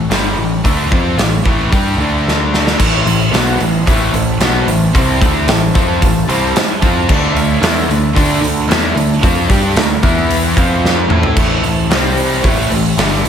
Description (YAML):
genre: hard rock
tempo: 112 BPM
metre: 4/4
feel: straight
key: A minor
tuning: A4 = 440 Hz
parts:
  - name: overdriven electric guitar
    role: riff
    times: 0.0-13.3 s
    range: G2 to A4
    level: -18 LUFS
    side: left 8 dB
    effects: slapback echo
  - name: tight distorted guitar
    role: riff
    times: 0.0-13.3 s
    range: G2 to A4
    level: -18 LUFS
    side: right 8 dB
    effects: distortion, slapback echo
  - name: growling picked electric bass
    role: bass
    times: 0.0-13.3 s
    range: G1 to A2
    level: -18 LUFS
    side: equal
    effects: overdrive
  - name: big rock drum kit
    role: drums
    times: 0.1-13.3 s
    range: crash cymbal, hi-hat, kick drum, snare drum, toms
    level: -15 LUFS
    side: equal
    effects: none
  - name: warm analog pad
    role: sustained chords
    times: 2.8-13.3 s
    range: D4 to C6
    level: -24 LUFS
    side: right 1 dB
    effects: chorus
room: moderate concert hall reverb, RT60 1.9 s, studio ambience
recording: big arena sound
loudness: -11 LUFS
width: side -8 dB against mid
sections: 0.0-2.8 A section; 2.8-11.4 B section; 11.4-13.3 C section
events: drum fill 2.3-2.8, 10.8-11.4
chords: 0.0 Am; 2.0 D5; 2.8 Am; 7.1 D5; 10.0 E5; 10.6 F5; 11.1 D5; 11.4 Am; 11.9 C5; 12.4 Am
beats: 0.10 | 0.64 1.18 1.72 2.26 | 2.79 3.33 3.87 4.41 | 4.94 5.48 6.01 6.55 | 7.09 7.62 8.16 8.69 | 9.23 9.76 10.30 10.84 | 11.37 11.91 12.44 12.98